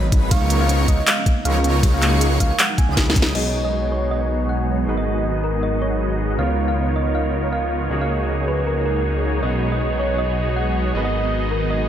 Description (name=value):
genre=future bass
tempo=158 BPM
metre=4/4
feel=swing 55% on 16ths, half-time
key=B lydian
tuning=A4 = 441 Hz
part: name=thumb-piano-like synth pluck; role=melody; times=0.0-11.8 s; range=A#4 to G#5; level=-26 LUFS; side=right 1 dB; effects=chorus, cassette tape, sidechain pumping, tape echo
part: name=ethereal airy pad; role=sustained chords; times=0.0-11.9 s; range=C#3 to A#4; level=-30 LUFS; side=right 2 dB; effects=ensemble chorus, built-in reverb, phaser, sidechain pumping
part: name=airy dreamy lead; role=arpeggios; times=0.0-3.3 s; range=B5 to D#6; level=-31 LUFS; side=equal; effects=chorus, phaser, sidechain pumping
part: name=soft round pluck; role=arpeggios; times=0.0-3.3 s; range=G#3 to D#5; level=-30 LUFS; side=right 4 dB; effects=chorus, sidechain pumping, diffuse ambient delay
part: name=supersaw chords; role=riff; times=0.0-11.9 s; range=E#3 to D#5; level=-24 LUFS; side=equal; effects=lush chorus, sidechain pumping, low-pass filter, diffuse ambient delay
part: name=wide detuned saw bass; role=bass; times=0.0-11.9 s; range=G#1 to C#2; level=-22 LUFS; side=equal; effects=chorus, sidechain pumping
part: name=electronic kick drum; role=drums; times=0.1-3.2 s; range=none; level=-18 LUFS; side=equal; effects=none
part: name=trap drum kit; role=drums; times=0.1-3.4 s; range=crash cymbal, handclaps, hi-hat, ride cymbal, snare drum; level=-21 LUFS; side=equal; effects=none
part: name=warm grand piano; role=accompaniment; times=3.3-11.9 s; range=B2 to B4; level=-31 LUFS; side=right 2 dB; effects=sidechain pumping, diffuse ambient delay
room=moderate plate reverb, RT60 1.7 s, digital ambience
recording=dreamy mix soaked in reverb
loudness=-17 LUFS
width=side -10 dB against mid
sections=0.0-3.4 A section; 3.4-11.9 B section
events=drop 0.0-3.4; drum fill 3.0-3.4; filter sweep on supersaw synth 3.4-11.9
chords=0.3 C#13; 1.8 F#69/C#; 3.4 B69; 4.9 G#m7; 6.4 C#13; 7.9 F#69/C#; 9.4 B69; 10.9 G#m7